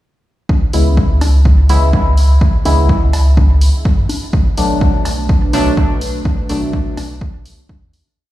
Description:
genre	dub techno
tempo	125 BPM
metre	4/4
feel	straight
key	C# phrygian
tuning	A4 = 440 Hz
part	pure sine sub bass	bass	0.5-7.9 s	B1 to F#2	-13 LUFS	equal	sidechain pumping
part	electronic kick drum	drums	0.5-7.8 s	none	-14 LUFS	equal	overdrive
part	bongos and cowbell	percussion	0.5-7.8 s	none	-27 LUFS	left 3 dB	overdrive, sidechain pumping on perc, dub echo
part	resonant sweep polysynth	stabs	0.7-6.8 s	B2 to E4	-19 LUFS	left 1 dB	chorus, phaser, vintage 12-bit sampler grit, sidechain pumping, dub echo
part	electronic hi-hat	drums	0.7-8.0 s	none	-29 LUFS	equal	overdrive
part	dark analog pad	sustained chords	4.3-8.1 s	A3 to B4	-24 LUFS	right 3 dB	chorus, sidechain pumping
room	little or no reverb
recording	played on a big sound system in a bare room, stone room reverb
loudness	-11 LUFS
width	side -15 dB against mid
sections	0.5-8.2 groove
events	fade-out 5.6-8.2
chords	0.5 C#m7; 4.3 Bm7

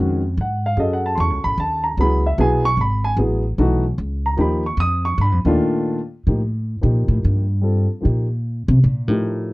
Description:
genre	modal jazz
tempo	149 BPM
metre	3/4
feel	swing 65% on 8ths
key	C dorian from 5.6 s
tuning	A4 = 440 Hz
part	dark concert grand piano	accompaniment	0.0-9.5 s	Bb2 to Eb6	-20 LUFS	equal	none
part	upright bass	bass	0.0-9.5 s	Ab1 to C3	-18 LUFS	equal	none
room	little or no reverb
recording	dry, close 1970s-style studio recording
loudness	-17 LUFS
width	side -21 dB against mid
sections	0.0-5.6 A section; 5.6-9.5 A section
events	upright bass solo 5.6-9.5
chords	0.0 Ebm11; 0.8 Gbm11; 4.4 Gm7; 5.6 Cm11 (rootless)

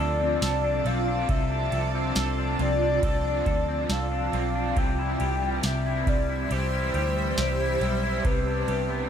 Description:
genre	dream pop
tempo	69 BPM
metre	4/4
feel	straight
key	C major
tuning	A4 = 440 Hz
part	hollow clarinet-like synth lead	melody	0.0-9.1 s	B4 to G5	-29 LUFS	left 3 dB	chorus, analog delay
part	cranked stack guitar	accompaniment	0.0-9.1 s	C3 to A4	-34 LUFS	right 5 dB	overdrive, tremolo, analog chorus, analog delay
part	granular cloud pad	sustained chords	0.0-9.1 s	F4 to E6	-33 LUFS	right 2 dB	built-in reverb, phaser
part	clean electric guitar	arpeggios	0.0-9.1 s	C3 to A4	-30 LUFS	left 3 dB	analog chorus, analog delay
part	vintage muted picked electric bass	bass	0.0-9.1 s	B1 to D2	-29 LUFS	right 1 dB	none
part	booming analog drum machine	drums	0.4-8.9 s	kick drum, ride cymbal, snare drum, tambourine	-28 LUFS	right 1 dB	analog delay
room	moderate spring reverb, RT60 2.8 s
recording	echo-heavy mix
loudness	-23 LUFS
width	side -8 dB against mid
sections	0.0-9.1 A section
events	none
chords	0.0 Dm; 4.8 C; 8.2 G/C

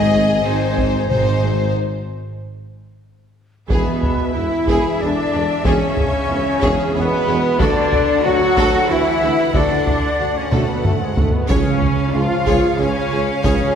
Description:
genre	cinematic, epic orchestral film score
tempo	92 BPM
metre	3/4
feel	straight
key	unclear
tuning	A4 = 440 Hz
part	clear studio violin section	melody	0.0-13.8 s	C5 to F#5	-31 LUFS	left 3 dB	none
part	rich symphonic violin section	second line	0.0-13.7 s	Eb4 to C#5	-29 LUFS	equal	none
part	clear French horn section	sustained chords	0.0-13.8 s	G#3 to Eb5	-22 LUFS	left 3 dB	none
part	warm trombone section	sustained chords	0.0-13.8 s	Ab2 to C4	-24 LUFS	equal	none
part	clear trumpet section	stabs	0.0-1.7 s	Ab5	-31 LUFS	equal	none
part	clear symphonic double bass section	bass	0.0-13.5 s	Ab1 to E2	-26 LUFS	right 2 dB	none
part	mellow tuba	bass	0.0-13.6 s	E1 to D2	-24 LUFS	right 2 dB	none
part	rich symphonic cello section	bass	0.0-13.8 s	Ab2 to F#4	-24 LUFS	right 1 dB	none
part	dark studio viola section	accompaniment	0.1-13.7 s	Ab3 to G#4	-27 LUFS	equal	none
part	solo taiko drums	drums	0.8-13.8 s	none	-22 LUFS	equal	none
part	mellow concert flute	second line	3.7-13.8 s	G#4 to F#5	-24 LUFS	left 1 dB	none
part	timpani	percussion	11.5-12.4 s	C#3	-24 LUFS	right 5 dB	none
room	wet concert hall reverb, RT60 1.8 s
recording	heard from further back in the room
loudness	-15 LUFS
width	side -8 dB against mid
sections	0.0-3.7 A section; 3.7-13.8 B section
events	break 1.8-3.7; drum fill 2.7-3.7, 10.5-11.5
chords	0.0 Ab; 1.8 N.C.; 3.7 E; 7.6 D; 11.5 C#

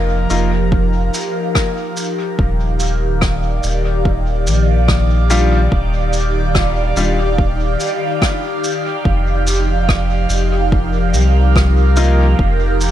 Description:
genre	ambient dub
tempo	72 BPM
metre	4/4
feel	swing 55% on 16ths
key	unclear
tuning	A4 = 440 Hz
part	airy breathy pad	sustained chords	0.0-12.9 s	Eb3 to F5	-19 LUFS	equal	chorus, phaser
part	soft dub sub bass	bass	0.0-12.9 s	Eb1 to C2	-15 LUFS	equal	none
part	bright upright piano	stabs	0.3-12.3 s	G3 to F4	-24 LUFS	left 3 dB	dub echo
part	shaker and rim click	drums	0.3-12.9 s	none	-24 LUFS	equal	dub echo
part	electronic kick drum	drums	0.7-12.6 s	none	-17 LUFS	equal	overdrive
room	light reverb, small room ambience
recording	none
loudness	-13 LUFS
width	side -12 dB against mid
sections	0.0-12.9 A section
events	none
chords	0.0 F7sus4; 2.4 Ebmaj9; 9.1 F7sus4

